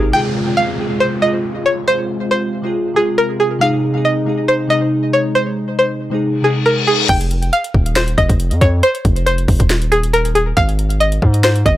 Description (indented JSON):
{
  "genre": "hip hop, trap",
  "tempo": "138 BPM",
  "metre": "4/4",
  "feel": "half-time",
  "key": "unclear",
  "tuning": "A4 = 439 Hz",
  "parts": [
    { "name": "string-like resonator pluck", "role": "melody", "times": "0.0-11.8 s", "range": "Ab4 to G5", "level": "-16 LUFS", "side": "equal", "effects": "chorus, tape echo" },
    { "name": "glassy digital keys", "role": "accompaniment", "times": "0.0-7.1 s", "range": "C3 to Ab4", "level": "-19 LUFS", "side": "equal", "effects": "chorus" },
    { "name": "warm analog pad", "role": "sustained chords", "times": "0.0-7.1 s", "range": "C3 to F4", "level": "-23 LUFS", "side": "left 1 dB", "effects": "chorus" },
    { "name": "distorted 808-style bass", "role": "bass", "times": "0.0-0.1, 7.1-11.8 s", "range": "Eb1 to Ab2", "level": "-16 LUFS", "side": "equal", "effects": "distortion" },
    { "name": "downlifter and reverse cymbal", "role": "sound effects", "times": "0.1-3.6, 6.4-7.1 s", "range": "none", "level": "-23 LUFS", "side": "left 4 dB", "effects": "none" },
    { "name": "trap drum kit", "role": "drums", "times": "7.1-11.8 s", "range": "crash cymbal, hi-hat, kick drum, snare drum", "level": "-16 LUFS", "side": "equal", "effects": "none" }
  ],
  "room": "digital ambience",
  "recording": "dry, gritty hardware recording",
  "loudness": "-13 LUFS",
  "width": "side -14 dB against mid",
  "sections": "0.1-7.1 A section; 7.1-11.8 B section",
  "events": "reverse cymbal 6.4-7.1",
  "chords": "0.1 Fm; 3.6 Ab; 7.1 F5; 10.6 Ab5"
}